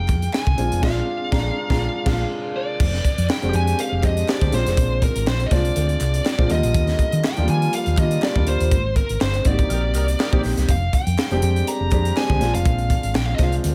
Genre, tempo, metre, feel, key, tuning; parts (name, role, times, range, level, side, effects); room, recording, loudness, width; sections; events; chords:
polished 1980s jazz-funk pop; 122 BPM; 4/4; swing 54% on 16ths; F dorian; A4 = 440 Hz
bluesy overdriven lead guitar; melody; 0.0-13.5 s; Bb4 to Bb5; -28 LUFS; equal; distortion
warm grand piano; accompaniment; 0.0-13.7 s; D3 to Bb5; -28 LUFS; equal; analog chorus
hollow-body short-scale fingered electric bass; bass; 0.0-13.7 s; F1 to Eb3; -24 LUFS; equal
crisp fusion drum kit; drums; 0.1-13.7 s; crash cymbal, hi-hat, kick drum, snare drum; -25 LUFS; equal; gated reverb
group handclap; percussion; 0.1-13.3 s; -42 LUFS; equal
warm horn section; second line; 9.7-10.6 s; Eb4 to Bb4; -36 LUFS; equal
little or no reverb; -20 LUFS; mono
0.0-2.8 A section; 2.8-13.7 B section
band accent 0.8-2.8, 8.7-10.7; grand piano fill 1.3-2.8
0.0 Fm11; 0.6 Bb7; 2.8 Fm69; 4.5 Bb7; 6.5 Ebmaj7; 8.7 Abmaj9; 10.7 Fm69; 12.4 Bb7